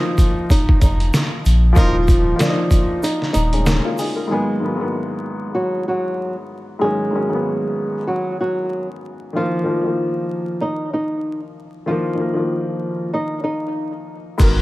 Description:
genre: hip hop, boom-bap hip-hop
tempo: 95 BPM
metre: 4/4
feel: swing 58% on 16ths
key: G# dorian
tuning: A4 = 437 Hz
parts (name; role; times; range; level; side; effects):
- flamenco guitar; melody; 0.0-13.9 s; E#3 to D#5; -22 LUFS; equal; high-pass filter, low-pass filter, tape echo
- dark upright piano; accompaniment; 0.0-14.6 s; G#2 to A#4; -24 LUFS; left 1 dB; high-pass filter, low-pass filter
- trip hop sampler-style drum kit; drums; 0.2-4.2, 14.4-14.6 s; crash cymbal, hi-hat, kick drum, snare drum; -17 LUFS; equal; none
- egg shaker; percussion; 0.2-4.1, 14.4-14.6 s; none; -41 LUFS; right 4 dB; none
- soft dub sub bass; bass; 0.8-3.8, 14.4-14.6 s; D#1 to A#1; -16 LUFS; equal; none
- warm horn section; stabs; 1.8-2.0 s; E#3 to A#4; -29 LUFS; equal; high-pass filter, low-pass filter, tape echo
room: light reverb, studio reverb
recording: vinyl crackle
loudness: -17 LUFS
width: side -18 dB against mid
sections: 0.0-4.3 A section; 4.3-14.4 B section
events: break 3.0-4.3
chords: 0.0 D#sus2; 4.3 G#m7; 9.3 D#sus2

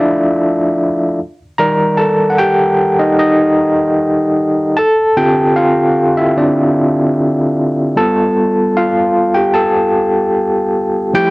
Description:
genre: soul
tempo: 75 BPM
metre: 4/4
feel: straight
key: unclear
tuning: A4 = 440 Hz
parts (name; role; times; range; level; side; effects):
- overdriven tine electric piano; solo; 0.0-11.3 s; D3 to Bb5; -11 LUFS; equal; fast tremolo, cassette tape
room: moderate studio reverb, RT60 0.6 s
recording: home recording on cassette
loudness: -11 LUFS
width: side -24 dB against mid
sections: 0.0-11.3 A section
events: tine electric piano solo 0.0-11.3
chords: 0.0 Fmaj7; 1.2 Ebmaj7; 4.8 Dm11; 8.0 G9

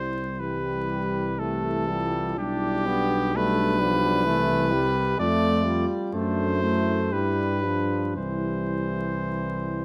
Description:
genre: classical, hymn-like piece for brass band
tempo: 55-66 BPM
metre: 3/4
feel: rubato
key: C major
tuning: A4 = 440 Hz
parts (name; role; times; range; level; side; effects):
- clear cornet; melody; 0.0-9.8 s; G4 to D5; -30 LUFS; equal; none
- dark French horn section; second line; 0.0-9.8 s; D4 to G4; -35 LUFS; equal; none
- mellow euphonium; accompaniment; 0.0-9.8 s; E3 to A3; -34 LUFS; equal; none
- mellow tuba; bass; 0.0-9.8 s; B1 to G2; -31 LUFS; equal; none
- clear trombone; accompaniment; 0.4-9.8 s; E3 to D4; -32 LUFS; equal; none
room: light reverb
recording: close, detailed microphones, vinyl crackle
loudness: -25 LUFS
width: mono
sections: 0.0-9.8 A section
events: none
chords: 0.0 C; 2.4 G7/B; 4.3 C; 5.2 F; 6.1 D7/F#; 7.1 G7; 8.2 C

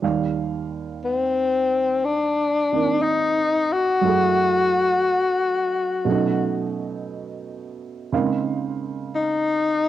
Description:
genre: jazz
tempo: 59 BPM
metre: 4/4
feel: swing 69% on 8ths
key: unclear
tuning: A4 = 440 Hz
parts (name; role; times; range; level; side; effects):
- dark baby grand piano; accompaniment; 0.0-9.9 s; Eb2 to F5; -25 LUFS; right 6 dB; cassette tape
- breathy tenor saxophone; melody; 1.0-9.9 s; C4 to Gb4; -19 LUFS; left 3 dB; cassette tape
room: light reverb, small room ambience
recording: home recording on cassette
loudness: -19 LUFS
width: side -12 dB against mid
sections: 0.0-9.9 A section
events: none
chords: 0.0 Ebmaj9; 4.0 Gbm7; 6.1 B9; 8.1 Dbmaj13

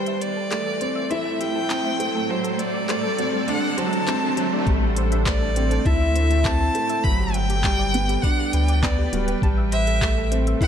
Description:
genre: piano and strings electronica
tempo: 101 BPM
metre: 4/4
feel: straight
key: A dorian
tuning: A4 = 441 Hz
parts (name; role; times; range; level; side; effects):
- warm violin; melody; 0.0-10.7 s; C5 to B5; -26 LUFS; equal; none
- granular cloud pad; sustained chords; 0.0-10.7 s; A3 to G5; -30 LUFS; right 1 dB; built-in reverb, sidechain pumping
- clear upright piano; riff; 0.0-10.7 s; F#3 to E4; -26 LUFS; right 2 dB; none
- riser; sound effects; 0.0-4.7 s; none; -31 LUFS; left 2 dB; none
- soft round pluck; arpeggios; 0.1-10.7 s; F#4 to A5; -35 LUFS; left 3 dB; chorus, vintage 12-bit sampler grit, sidechain pumping, ping-pong delay
- organic electronic drum kit; drums; 0.1-10.7 s; handclaps, hi-hat; -30 LUFS; left 1 dB; overdrive
- round analog bass; bass; 4.7-10.5 s; D1 to D2; -22 LUFS; equal; sidechain pumping
- electronic kick drum; drums; 4.7-10.7 s; none; -23 LUFS; equal; none
room: light reverb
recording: none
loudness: -19 LUFS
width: side -8 dB against mid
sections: 0.0-4.7 A section; 4.7-10.7 B section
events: build-up 0.0-4.7; riser 0.0-4.7; filter sweep on ambient pad 0.0-4.7; filter sweep on synth arpeggio sound 0.0-4.7; drop 4.7-10.7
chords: 0.0 Am7; 2.3 D7; 4.7 Am7; 7.0 Gmaj7; 9.4 Am7

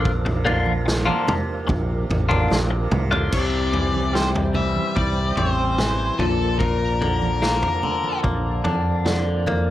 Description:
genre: psychedelic rock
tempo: 73 BPM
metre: 4/4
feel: straight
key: unclear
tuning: A4 = 440 Hz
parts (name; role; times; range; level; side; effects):
- tonewheel organ; sustained chords; 0.0-9.7 s; F3 to D5; -31 LUFS; right 6 dB; overdrive, chorus vibrato, fast rotary speaker
- twangy electric guitar; riff; 0.0-9.7 s; Bb2 to F4; -24 LUFS; left 3 dB; flanger
- fingered electric bass; bass; 0.0-9.7 s; A1 to F2; -24 LUFS; equal; none
- tanpura; drone; 0.0-9.7 s; C2 to C3; -36 LUFS; equal; none
- vintage drum kit; drums; 0.1-9.7 s; crash cymbal, kick drum, snare drum, toms; -25 LUFS; equal; none
- congas; percussion; 0.5-9.7 s; none; -32 LUFS; right 6 dB; none
- octave-fuzz lead guitar; melody; 3.3-8.2 s; A4 to E5; -26 LUFS; left 2 dB; distortion, analog delay
room: light reverb, small room ambience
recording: none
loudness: -19 LUFS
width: side -13 dB against mid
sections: 0.0-3.3 A section; 3.3-9.7 B section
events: drum fill 2.5-3.3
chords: 0.0 Bb; 3.3 C; 6.2 Bb

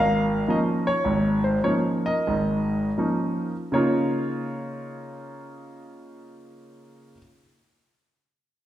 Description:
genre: solo jazz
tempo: 78-112 BPM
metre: 4/4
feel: swing 68% on 8ths, rubato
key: Db major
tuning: A4 = 440 Hz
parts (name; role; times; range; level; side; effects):
- clear concert grand piano; solo; 0.0-7.2 s; Ab1 to F5; -22 LUFS; equal; none
room: wet recital hall reverb, RT60 1.5 s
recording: recorded in a church or concert hall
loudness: -22 LUFS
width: side -12 dB against mid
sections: 0.0-3.7 A section; 3.7-8.7 B section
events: slowing down 0.0-3.7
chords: 0.0 Db69

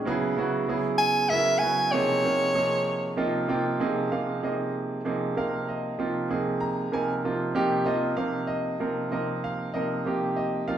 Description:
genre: jazz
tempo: 64 BPM (dotted quarters)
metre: 6/8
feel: straight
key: unclear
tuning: A4 = 440 Hz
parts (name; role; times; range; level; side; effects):
- bright concert grand piano; accompaniment; 0.0-10.8 s; C3 to Bb5; -26 LUFS; right 2 dB; none
- clear soprano saxophone; melody; 1.0-3.2 s; Db5 to Ab5; -23 LUFS; equal; none
room: wet large studio reverb, RT60 1.3 s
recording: band playing live in one room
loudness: -24 LUFS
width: side -10 dB against mid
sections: 0.0-3.8 A section; 3.8-10.8 B section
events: grand piano fill 2.9-3.8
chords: 0.1 Dbm7; 1.9 Bbm11; 7.6 F9sus4

